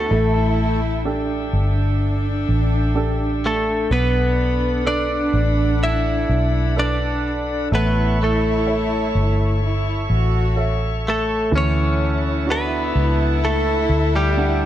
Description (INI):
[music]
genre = pop ballad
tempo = 63 BPM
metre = 4/4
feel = straight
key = unclear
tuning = A4 = 440 Hz
[part]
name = direct-recorded clean electric guitar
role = melody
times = 0.0-14.7 s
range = G3 to E5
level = -22 LUFS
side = equal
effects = none
[part]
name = dark studio cello section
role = second line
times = 0.0-14.7 s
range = D4 to F#4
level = -26 LUFS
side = equal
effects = none
[part]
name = clear baby grand piano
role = accompaniment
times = 0.0-14.7 s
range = E3 to F#5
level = -27 LUFS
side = right 3 dB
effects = none
[part]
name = bright tonewheel organ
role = sustained chords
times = 0.0-14.7 s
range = A4 to C#6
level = -30 LUFS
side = left 1 dB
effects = overdrive, slow rotary speaker
[part]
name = vintage muted fingered electric bass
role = bass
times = 0.0-14.7 s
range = G1 to D2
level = -20 LUFS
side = equal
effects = none
[sound]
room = light reverb, small room ambience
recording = dark, warm production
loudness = -17 LUFS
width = side -12 dB against mid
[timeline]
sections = 0.0-14.7 A section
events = none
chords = 0.1 A7sus4; 3.9 Bm7; 7.7 A; 11.5 Dadd9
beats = | 0.10 1.06 2.01 2.96 | 3.91 4.87 5.82 6.77 | 7.72 8.68 9.63 10.58 | 11.53 12.48 13.44 14.39